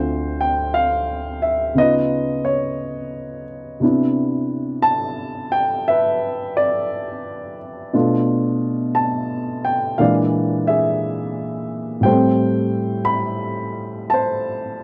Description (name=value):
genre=solo jazz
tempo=58 BPM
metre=4/4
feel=swing 67% on 8ths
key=unclear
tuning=A4 = 440 Hz
part: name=dark upright piano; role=solo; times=0.0-14.8 s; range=D2 to B5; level=-20 LUFS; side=equal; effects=none
room=studio reverb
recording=dry, close 1970s-style studio recording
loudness=-20 LUFS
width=mono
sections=0.0-14.8 A section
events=none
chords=0.0 Dm7; 1.8 C#9; 3.8 Cmaj9; 7.9 Bm7b5; 10.0 Bb7#11; 12.1 Am9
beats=0.73 1.76 2.79 | 3.82 4.85 5.88 6.91 | 7.94 8.97 10.00 11.03 | 12.06 13.09 14.12